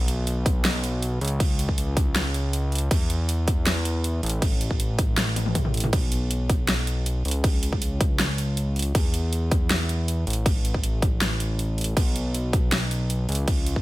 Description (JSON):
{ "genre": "future bass", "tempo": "159 BPM", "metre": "4/4", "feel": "half-time", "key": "C# minor", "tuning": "A4 = 439 Hz", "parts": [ { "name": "fat analog bass", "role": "bass", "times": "0.0-13.8 s", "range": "A1 to E2", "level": "-25 LUFS", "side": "equal", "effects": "tube saturation, sidechain pumping" }, { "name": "big-room dance drum kit", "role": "drums", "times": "0.1-13.7 s", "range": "crash cymbal, hi-hat, snare drum, toms", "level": "-28 LUFS", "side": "equal", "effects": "none" }, { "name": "electronic kick drum", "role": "drums", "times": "0.5-13.8 s", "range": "none", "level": "-23 LUFS", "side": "equal", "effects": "none" } ], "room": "little or no reverb", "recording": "none", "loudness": "-22 LUFS", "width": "side -18 dB against mid", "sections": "0.0-13.8 A section", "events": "drum fill 5.4-5.9", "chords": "none", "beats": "0.27 0.65 1.02 | 1.40 1.78 2.16 2.53 | 2.91 3.29 3.67 4.04 | 4.42 4.80 5.17 5.55 | 5.93 6.31 6.68 7.06 | 7.44 7.82 8.19 8.57 | 8.95 9.33 9.70 10.08 | 10.46 10.84 11.21 11.59 | 11.97 12.35 12.72 13.10 | 13.48" }